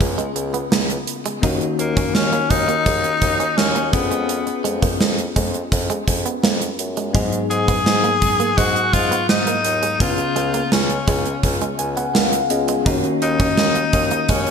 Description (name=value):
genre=1980s-style pop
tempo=84 BPM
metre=4/4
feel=straight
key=unclear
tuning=A4 = 440 Hz
part: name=bell-like tine electric piano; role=accompaniment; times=0.0-14.5 s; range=Ab2 to Ab5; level=-24 LUFS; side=left 4 dB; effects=fast stereo tremolo
part: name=warm bassoon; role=bass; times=0.0-14.5 s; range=Db2 to Ab2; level=-26 LUFS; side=equal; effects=none
part: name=gated 80s drum kit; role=drums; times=0.0-14.5 s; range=hi-hat, kick drum, snare drum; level=-20 LUFS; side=right 2 dB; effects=gated reverb
part: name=direct-recorded clean electric guitar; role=riff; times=0.2-14.5 s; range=Ab3 to Eb4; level=-28 LUFS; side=right 5 dB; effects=lush chorus, ping-pong delay
part: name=raspy tenor saxophone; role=melody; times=1.8-14.5 s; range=Bb3 to Ab4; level=-21 LUFS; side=left 3 dB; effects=ping-pong delay
room=moderate lush hall reverb, RT60 2.6 s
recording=bright 1980s-style digital production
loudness=-16 LUFS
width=side -6 dB against mid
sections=0.0-14.5 A section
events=tine electric piano fill 11.4-12.9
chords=0.0 Db7; 1.4 Ebm7; 3.9 Db7/F; 7.1 Abm7; 10.0 Db7; 12.9 Ebm7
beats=0.01 0.72 | 1.43 2.15 2.86 3.58 | 4.29 5.00 5.72 6.43 | 7.15 7.86 8.58 9.29 | 10.01 10.72 11.43 12.15 | 12.86 13.58 14.29